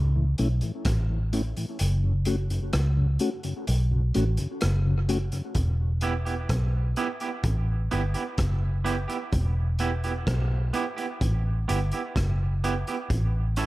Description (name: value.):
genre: dub reggae.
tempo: 64 BPM.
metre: 4/4.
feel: straight.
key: E dorian.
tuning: A4 = 440 Hz.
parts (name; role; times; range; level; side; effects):
vintage muted fingered electric bass; bass; 0.0-13.7 s; E1 to C#2; -24 LUFS; equal; none.
mellow tonewheel organ; accompaniment; 0.2-5.4 s; F#2 to F#4; -30 LUFS; left 2 dB; slow rotary speaker, dub echo.
crunchy breakbeat drum kit; drums; 0.4-13.7 s; hi-hat, kick drum, rim click; -32 LUFS; equal; none.
electric guitar at the edge of break-up; accompaniment; 6.0-13.7 s; B3 to A4; -31 LUFS; right 5 dB; tremolo, dub echo.
room: light reverb, small room ambience.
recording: echo-heavy mix.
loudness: -24 LUFS.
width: side -18 dB against mid.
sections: 0.0-5.6 A section; 5.6-13.7 B section.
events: break 0.0-5.6; kick muted 1.8-5.6.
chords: 0.0 A; 1.8 F#m; 5.6 Em; 13.1 A.